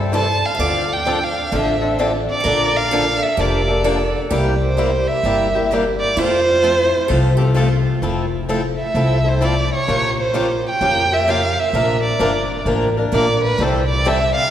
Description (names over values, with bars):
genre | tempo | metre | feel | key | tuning
acoustic string swing (jazz manouche) | 129 BPM | 4/4 | swing 64% on 8ths | F major | A4 = 438 Hz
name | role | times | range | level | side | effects
picked steel-string acoustic guitar | second line | 0.0-8.0 s | F4 to E5 | -26 LUFS | right 2 dB | none
picked swing-style acoustic guitar | accompaniment | 0.0-14.2 s | C3 to Bb4 | -22 LUFS | left 2 dB | none
upright bass | bass | 0.0-14.3 s | F1 to G2 | -21 LUFS | left 1 dB | none
picked steel-string acoustic guitar | accompaniment | 0.1-14.2 s | C3 to Bb4 | -26 LUFS | right 2 dB | none
warm violin | melody | 0.2-14.5 s | B4 to A5 | -19 LUFS | right 2 dB | none
room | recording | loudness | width
wet concert hall reverb, RT60 2.3 s | recorded in a church or concert hall | -15 LUFS | side -10 dB against mid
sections
0.0-8.0 A section; 8.0-14.5 B section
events
violin solo 8.0-14.5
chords
0.0 C6; 0.6 Dm7; 2.5 Bbmaj7; 4.3 C7; 6.2 F; 8.0 Fmaj7; 9.9 Bbm6; 11.7 Bbadd9; 13.6 C6